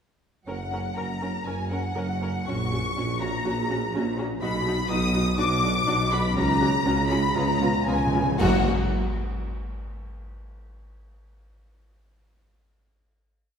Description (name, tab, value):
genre	classical, dramatic, fast romantic movement for symphony orchestra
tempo	121 BPM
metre	4/4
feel	uneven beats, rubato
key	F# major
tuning	A4 = 442 Hz
part	clear chamber violin section	melody	0.5-8.7 s	F#5 to D#6	-31 LUFS	left 5 dB	none
part	warm symphonic violin section	second line	0.5-8.7 s	F#4 to D#6	-30 LUFS	left 2 dB	none
part	warm symphonic viola section	accompaniment	0.5-8.7 s	A#3 to A#4	-31 LUFS	right 1 dB	none
part	mellow tuba	bass	0.5-8.6 s	F#1 to C#2	-30 LUFS	right 1 dB	none
part	rich symphonic cello section	bass	0.5-8.7 s	F#2 to C#3	-30 LUFS	equal	none
part	rich symphonic double bass section	bass	0.5-8.7 s	F#1 to C#2	-31 LUFS	right 2 dB	none
part	cymbal swell, clash cymbals and concert bass drum	percussion	4.4-9.4 s	none	-33 LUFS	equal	none
part	timpani	percussion	7.3-8.6 s	F#2 to C#3	-31 LUFS	left 1 dB	none
room	wet concert hall reverb, RT60 2.1 s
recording	heard from further back in the room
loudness	-22 LUFS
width	side -7 dB against mid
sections	0.5-8.4 A section; 8.4-10.4 final chord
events	timpani fill 7.3-8.4; band accent 8.4-8.9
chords	0.5 F#; 2.5 F#/A#; 4.4 B; 5.4 Bm; 6.4 F#/C#; 7.3 C#7; 8.4 F#